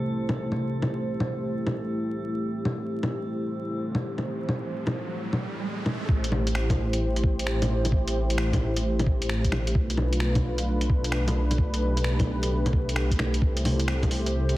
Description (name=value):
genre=future garage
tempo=131 BPM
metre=4/4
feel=swing 66% on 16ths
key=A minor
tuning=A4 = 442 Hz
part: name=dark analog pad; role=sustained chords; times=0.0-14.6 s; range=C3 to C5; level=-29 LUFS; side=equal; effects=chorus, vintage 12-bit sampler grit, sidechain pumping
part: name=drifting glass-harmonics texture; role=texture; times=0.0-6.1, 13.8-14.6 s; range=G4 to A4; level=-44 LUFS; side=right 1 dB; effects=chorus, built-in reverb
part: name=lo-fi sampler-style drum kit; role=drums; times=0.3-14.5 s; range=bongos, finger snaps, hi-hat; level=-29 LUFS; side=equal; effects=soft clipping on snare
part: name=riser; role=sound effects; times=3.7-6.1 s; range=none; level=-36 LUFS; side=right 3 dB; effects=none
part: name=dark detuned saw bass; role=bass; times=6.1-14.6 s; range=A1 to C2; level=-26 LUFS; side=equal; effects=sidechain pumping
part: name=electronic kick drum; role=drums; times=6.1-14.1 s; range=none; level=-24 LUFS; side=equal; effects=none
room=light reverb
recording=dense, heavily limited modern master, vinyl crackle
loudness=-24 LUFS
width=side -16 dB against mid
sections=0.0-6.1 A section; 6.1-14.6 B section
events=riser 3.7-6.1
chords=0.0 Am7/C; 2.4 Am7; 9.8 Bm7b5; 13.4 Am7/C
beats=0.13 | 0.59 1.05 1.51 1.97 | 2.42 2.88 3.34 3.80 | 4.26 4.71 5.17 5.63 | 6.09 6.55 7.00 7.46 | 7.92 8.38 8.84 9.29 | 9.75 10.21 10.67 11.13 | 11.58 12.04 12.50 12.96 | 13.42 13.87 14.33